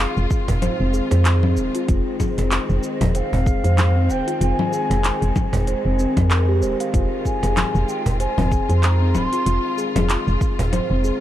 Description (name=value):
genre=organic downtempo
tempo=95 BPM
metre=4/4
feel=swing 57% on 16ths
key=F minor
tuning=A4 = 440 Hz
part: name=bansuri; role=melody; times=0.0-9.8 s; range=Eb5 to C6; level=-28 LUFS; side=left 1 dB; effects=digital delay
part: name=warm symphonic string section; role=sustained chords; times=0.0-11.2 s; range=Eb3 to F4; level=-29 LUFS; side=left 2 dB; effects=sidechain pumping
part: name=steel tongue drum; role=arpeggios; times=0.0-11.2 s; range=C4 to F5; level=-24 LUFS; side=equal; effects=digital delay
part: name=woody FM bass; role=bass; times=0.0-11.1 s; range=Eb1 to F2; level=-19 LUFS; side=equal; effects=none
part: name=organic electronic drum kit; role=drums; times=0.2-11.2 s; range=congas, handclaps, hi-hat, shaker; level=-25 LUFS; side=left 2 dB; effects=none
part: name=electronic kick drum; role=drums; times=0.3-10.6 s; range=none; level=-22 LUFS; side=equal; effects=none
part: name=cajon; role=percussion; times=0.5-10.7 s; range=none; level=-25 LUFS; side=right 2 dB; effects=none
room=small room ambience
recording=dark, warm production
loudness=-17 LUFS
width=side -12 dB against mid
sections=0.0-11.2 A section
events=none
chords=0.0 Fm7